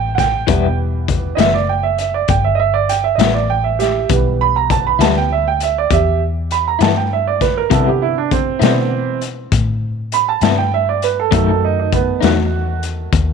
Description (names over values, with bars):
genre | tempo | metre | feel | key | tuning
slow blues | 66 BPM (dotted quarters) | 12/8 | straight | E minor | A4 = 441 Hz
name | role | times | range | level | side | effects
clear upright piano | accompaniment | 0.0-13.3 s | D3 to B5 | -17 LUFS | right 13 dB | none
vintage muted fingered electric bass | bass | 0.0-13.3 s | E1 to C3 | -20 LUFS | left 1 dB | none
raw garage drum kit | drums | 0.2-13.3 s | hi-hat, kick drum, snare drum | -19 LUFS | left 7 dB | none
electric guitar through a small old amp | accompaniment | 0.5-12.4 s | B2 to E4 | -20 LUFS | left 13 dB | tremolo
room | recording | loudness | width
light reverb, small room ambience | 1960s-style stereo with parts hard left and right | -13 LUFS | side -6 dB against mid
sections
0.0-13.3 A section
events
upright piano solo 0.0-13.3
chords
0.5 Em; 7.7 Cmaj7; 11.3 B7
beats
| 0.48 1.38 2.29 3.19 | 4.09 5.00 5.90 6.80 | 7.71 8.61 9.51 10.41 | 11.31 12.22 13.12